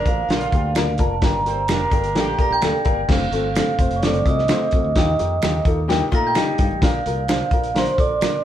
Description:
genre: uptempo 1960s-style soul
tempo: 129 BPM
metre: 4/4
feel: straight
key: unclear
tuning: A4 = 445 Hz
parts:
  - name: vibraphone with soft mallets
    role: melody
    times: 0.0-8.4 s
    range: C5 to Bb5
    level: -23 LUFS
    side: right 3 dB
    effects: none
  - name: mellow horn section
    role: second line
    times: 0.0-2.6 s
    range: D3 to C5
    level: -28 LUFS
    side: right 1 dB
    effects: none
  - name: warm upright piano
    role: accompaniment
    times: 0.0-8.4 s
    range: G2 to C5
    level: -24 LUFS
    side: left 3 dB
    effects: none
  - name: modern bright fingered electric bass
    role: bass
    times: 0.1-8.2 s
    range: F1 to Bb2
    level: -26 LUFS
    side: equal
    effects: none
  - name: warm soul drum kit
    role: drums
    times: 0.1-8.3 s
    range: crash cymbal, hi-hat, kick drum, snare drum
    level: -20 LUFS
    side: equal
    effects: vintage 12-bit sampler grit
  - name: finger snap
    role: percussion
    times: 0.8-8.3 s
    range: none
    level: -32 LUFS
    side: right 4 dB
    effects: none
  - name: glockenspiel with soft plastic mallets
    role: second line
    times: 2.4-8.4 s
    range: C6 to Bb6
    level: -31 LUFS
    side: right 3 dB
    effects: none
  - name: archtop guitar, miked and amplified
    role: riff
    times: 5.9-6.8 s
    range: G3 to G4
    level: -27 LUFS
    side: left 6 dB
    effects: none
room: moderate studio reverb, RT60 0.8 s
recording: band playing live in one room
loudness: -17 LUFS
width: side -11 dB against mid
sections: 0.0-3.1 A section; 3.1-8.4 B section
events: none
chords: 0.0 Bb; 3.1 F; 5.0 Ebadd9; 6.8 Bb

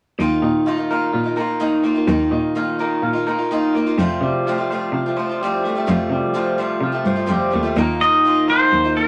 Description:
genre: rock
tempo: 127 BPM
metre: 4/4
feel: straight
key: unclear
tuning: A4 = 441 Hz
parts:
  - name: picked old ladder-braced acoustic guitar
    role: accompaniment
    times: 0.2-9.1 s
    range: F2 to F4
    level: -26 LUFS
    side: equal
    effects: none
  - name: electric guitar through a small old amp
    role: riff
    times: 0.2-9.1 s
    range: Eb3 to C5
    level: -22 LUFS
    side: equal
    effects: none
  - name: warm cello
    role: bass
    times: 0.2-9.1 s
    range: Eb2 to C3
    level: -25 LUFS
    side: equal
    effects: none
  - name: pedal steel guitar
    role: melody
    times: 8.0-9.1 s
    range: Bb4 to Eb5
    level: -16 LUFS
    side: equal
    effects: none
room: moderate studio reverb, RT60 0.6 s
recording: none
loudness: -19 LUFS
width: mono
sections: 0.2-7.8 A section; 7.8-9.1 B section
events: none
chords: 0.2 Ebsus2; 4.0 Fadd9; 7.8 Ebsus2

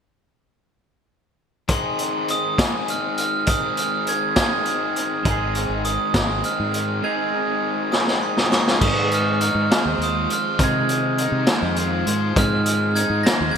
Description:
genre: indie rock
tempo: 68 BPM (dotted quarters)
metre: 6/8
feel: straight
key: Ab major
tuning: A4 = 441 Hz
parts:
  - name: glockenspiel with brass mallets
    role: melody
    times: 1.7-13.6 s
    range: C6 to Bb6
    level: -24 LUFS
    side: right 5 dB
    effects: none
  - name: raw garage guitar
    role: riff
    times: 1.7-13.6 s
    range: Ab2 to C5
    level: -26 LUFS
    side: left 6 dB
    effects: overdrive
  - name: raw garage drum kit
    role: drums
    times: 1.7-13.6 s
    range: crash cymbal, hi-hat, kick drum, snare drum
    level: -21 LUFS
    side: left 1 dB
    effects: gated reverb
  - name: raw garage guitar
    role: riff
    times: 5.2-13.6 s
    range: Eb3 to Ab4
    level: -28 LUFS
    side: right 7 dB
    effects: overdrive, ensemble chorus, ping-pong delay
  - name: growling fingered electric bass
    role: bass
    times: 5.2-13.6 s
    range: Ab1 to C3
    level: -24 LUFS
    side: left 1 dB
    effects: overdrive
room: moderate lush hall reverb, RT60 2.2 s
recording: bright 1980s-style digital production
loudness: -18 LUFS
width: side -7 dB against mid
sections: 1.7-8.8 A section; 8.8-13.6 B section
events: drum fill 7.9-8.8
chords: 1.7 Ab6

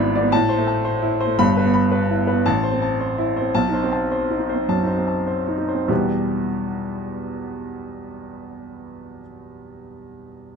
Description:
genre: classical, virtuoso piano study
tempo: 96-116 BPM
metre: 4/4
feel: rubato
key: E minor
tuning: A4 = 440 Hz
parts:
  - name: clear baby grand piano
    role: solo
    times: 0.0-10.6 s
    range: G1 to B5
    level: -20 LUFS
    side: equal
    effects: none
room: light reverb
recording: minimal, uncompressed stereo recording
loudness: -18 LUFS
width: side -6 dB against mid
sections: 0.0-5.9 A section; 5.9-10.6 B section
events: slowing down 0.3-5.9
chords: 0.3 Am; 1.4 Em/G; 2.5 Am; 3.5 B7b9; 5.9 Em

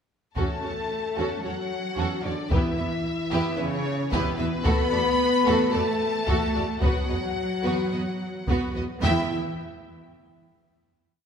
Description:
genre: cinematic, epic orchestral film score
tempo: 111 BPM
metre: 4/4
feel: straight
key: E dorian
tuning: A4 = 443 Hz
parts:
  - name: warm symphonic violin section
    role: melody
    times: 0.4-9.4 s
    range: B4 to B5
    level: -31 LUFS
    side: left 3 dB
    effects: none
  - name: warm symphonic violin section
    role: second line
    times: 0.4-9.3 s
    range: F#4 to G5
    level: -33 LUFS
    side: left 2 dB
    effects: none
  - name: warm symphonic viola section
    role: accompaniment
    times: 0.4-9.3 s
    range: A3 to F#4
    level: -30 LUFS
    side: right 2 dB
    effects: none
  - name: mellow French horn section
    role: sustained chords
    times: 0.4-9.3 s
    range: B3 to B4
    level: -30 LUFS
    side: left 7 dB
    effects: none
  - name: rich symphonic cello section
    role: bass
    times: 0.4-9.3 s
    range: B2 to B3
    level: -31 LUFS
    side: right 4 dB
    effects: none
  - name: rich symphonic double bass section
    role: bass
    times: 0.4-9.3 s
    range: E2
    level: -32 LUFS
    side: right 3 dB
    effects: none
  - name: taiko ensemble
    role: drums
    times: 0.4-9.2 s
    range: none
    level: -28 LUFS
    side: equal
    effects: none
room: wet concert hall reverb, RT60 2.1 s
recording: none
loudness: -23 LUFS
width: side -7 dB against mid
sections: 0.4-9.0 theme; 9.0-11.3 final chord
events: none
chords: 0.4 F#m/E; 2.5 Em; 4.7 D/E (rootless); 6.8 B5/E; 9.0 E5

